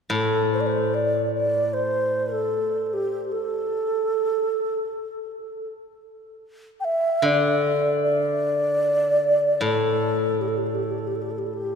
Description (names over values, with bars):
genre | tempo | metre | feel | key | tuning
chinese traditional, Chinese chamber ensemble | 76 BPM | 4/4 | straight | unclear | A4 = 440 Hz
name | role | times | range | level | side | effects
mellow xiao | melody | 0.1-11.8 s | G4 to G5 | -22 LUFS | right 1 dB | none
steel-string zither | accompaniment | 0.1-11.8 s | A2 to D3 | -26 LUFS | left 2 dB | none
room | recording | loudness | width
wet cathedral reverb, RT60 4.4 s | recorded in a church or concert hall | -21 LUFS | side -6 dB against mid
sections
0.1-11.8 A section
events
none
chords
none